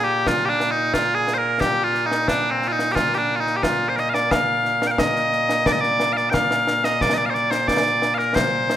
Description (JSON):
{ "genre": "scottish traditional, Scottish pipe music", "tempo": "89 BPM", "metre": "4/4", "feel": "straight", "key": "Bb major", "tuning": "A4 = 443 Hz", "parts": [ { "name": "loud bright bagpipes", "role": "melody", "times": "0.0-8.8 s", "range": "Bb2 to G5", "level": "-18 LUFS", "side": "equal", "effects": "none" }, { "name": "concert snare drum and concert bass drum", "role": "drums", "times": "0.3-8.8 s", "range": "none", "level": "-25 LUFS", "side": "left 1 dB", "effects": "none" } ], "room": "light reverb", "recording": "minimal, uncompressed stereo recording", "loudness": "-18 LUFS", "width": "side -11 dB against mid", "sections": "0.0-4.3 A section; 4.3-8.8 B section", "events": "none", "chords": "none" }